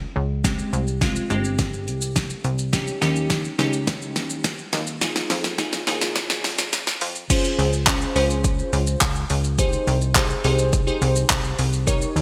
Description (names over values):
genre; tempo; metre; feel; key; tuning
dance-pop; 105 BPM; 4/4; straight; Ab major; A4 = 440 Hz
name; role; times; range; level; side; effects
plucky analog bass; bass; 0.0-12.2 s; G1 to F2; -27 LUFS; equal; sidechain pumping
glassy digital keys; accompaniment; 0.4-12.2 s; Ab3 to Db5; -28 LUFS; equal; chorus, sidechain pumping
deep house drum kit; drums; 0.4-12.2 s; crash cymbal, handclaps, hi-hat, kick drum, shaker, snare drum; -25 LUFS; equal; gated reverb
room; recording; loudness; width
light reverb; bright 1980s-style digital production, high-pass filter; -22 LUFS; mono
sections
0.0-7.3 A section; 7.3-12.2 B section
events
build-up 0.0-7.3; drum fill 0.0-7.3; filter sweep 0.0-7.3; drop 7.3-12.2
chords
0.4 Abmaj7; 2.7 Eb7; 5.0 Fm7; 7.3 Dbmaj7; 9.6 Abmaj7/C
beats
| 0.44 1.02 1.59 2.16 | 2.73 3.30 3.87 4.44 | 5.02 5.59 6.16 6.73 | 7.30 7.87 8.44 9.02 | 9.59 10.16 10.73 11.30 | 11.87